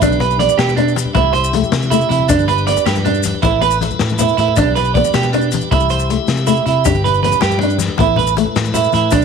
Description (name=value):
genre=highlife guitar band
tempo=105 BPM (dotted quarters)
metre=12/8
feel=straight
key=G major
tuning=A4 = 440 Hz
part: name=nylon-string guitar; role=accompaniment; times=0.0-9.2 s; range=A3 to D4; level=-21 LUFS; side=left 14 dB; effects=none
part: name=tonewheel organ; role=sustained chords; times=0.0-9.2 s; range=D4 to E5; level=-25 LUFS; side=left 2 dB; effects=slow rotary speaker
part: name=clean electric guitar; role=arpeggios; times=0.0-9.2 s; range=D4 to D5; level=-16 LUFS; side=right 11 dB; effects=wide subtle chorus, slapback echo
part: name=vintage muted fingered electric bass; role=bass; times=0.0-9.2 s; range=G1 to C3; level=-18 LUFS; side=left 1 dB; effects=none
part: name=crunchy breakbeat drum kit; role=drums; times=0.0-9.2 s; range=hi-hat, kick drum, snare drum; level=-22 LUFS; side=left 4 dB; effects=none
part: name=congas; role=percussion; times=0.0-9.2 s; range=none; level=-23 LUFS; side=left 11 dB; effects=none
part: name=maracas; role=percussion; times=0.0-9.2 s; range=none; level=-28 LUFS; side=left 17 dB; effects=none
room=light reverb, studio reverb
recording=1960s-style stereo with parts hard left and right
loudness=-12 LUFS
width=side -6 dB against mid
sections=0.0-9.2 A section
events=drum fill 5.9-6.8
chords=0.0 G/B; 1.2 C; 2.3 G; 3.4 Asus2; 4.6 G/B; 5.7 C; 6.8 G; 8.0 Asus2